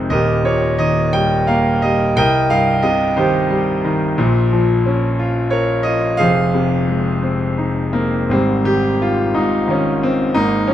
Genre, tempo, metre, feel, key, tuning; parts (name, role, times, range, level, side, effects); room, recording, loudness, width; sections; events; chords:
classical, lyrical solo piano; 59 BPM (dotted quarters); 6/8; rubato; F minor; A4 = 440 Hz
bright concert grand piano; solo; 0.0-10.7 s; Eb1 to G5; -14 LUFS; equal
light reverb; close, detailed microphones; -14 LUFS; side -11 dB against mid
0.0-8.3 A section; 8.3-10.7 B section
0.1 Eb; 2.2 Cm7; 4.2 Bbm; 6.2 Fm7; 8.3 Ab5